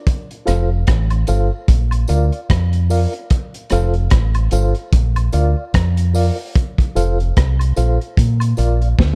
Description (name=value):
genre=roots reggae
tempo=74 BPM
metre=4/4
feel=swing 57% on 16ths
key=F major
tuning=A4 = 439 Hz
part: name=crunchy breakbeat drum kit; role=drums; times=0.1-9.2 s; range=hi-hat, kick drum, rim click, snare drum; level=-19 LUFS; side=equal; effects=none
part: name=mellow reed electric piano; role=stabs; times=0.5-8.9 s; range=F4 to F5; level=-26 LUFS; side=equal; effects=fast tremolo
part: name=deep dub fingered electric bass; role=bass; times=0.5-9.2 s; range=F1 to Bb2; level=-18 LUFS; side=equal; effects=none
part: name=tambourine and woodblock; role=percussion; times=0.5-8.8 s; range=none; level=-35 LUFS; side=equal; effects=none
room=small room ambience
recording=dark, warm production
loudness=-17 LUFS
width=mono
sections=0.0-9.2 A section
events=drum fill 9.0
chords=0.1 F; 1.7 Bb; 3.3 F; 4.9 Bb; 6.5 F; 8.2 Bb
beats=| 0.07 0.88 1.69 2.50 | 3.31 4.12 4.93 5.74 | 6.55 7.36 8.17 8.98